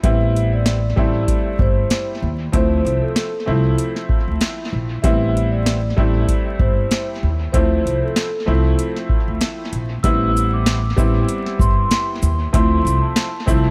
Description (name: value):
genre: hip hop, boom-bap hip-hop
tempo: 96 BPM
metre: 4/4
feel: swing 56% on 16ths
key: A minor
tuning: A4 = 440 Hz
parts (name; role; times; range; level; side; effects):
- vibraphone with soft mallets; melody; 0.0-13.7 s; A4 to E6; -27 LUFS; equal; high-pass filter, low-pass filter, dub echo
- bright upright piano; accompaniment; 0.0-13.7 s; F3 to E4; -26 LUFS; equal; cassette tape, high-pass filter, low-pass filter, dub echo
- upright bass; bass; 0.0-13.7 s; G1 to D#2; -21 LUFS; equal; none
- booming analog drum machine; drums; 0.0-13.6 s; hi-hat, kick drum, shaker, snare drum; -22 LUFS; equal; dub echo
room: studio reverb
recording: echo-heavy mix, vinyl crackle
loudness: -18 LUFS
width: mono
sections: 0.0-10.0 A section; 10.0-13.7 B section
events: none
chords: 0.0 Am7; 2.5 Dm9; 5.0 Am7; 7.5 Dm9; 10.0 Am7; 12.5 Dm9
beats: | 0.04 0.66 1.29 1.91 | 2.54 3.16 3.79 4.41 | 5.04 5.66 6.29 6.91 | 7.54 8.16 8.79 9.41 | 10.04 10.66 11.29 11.91 | 12.54 13.16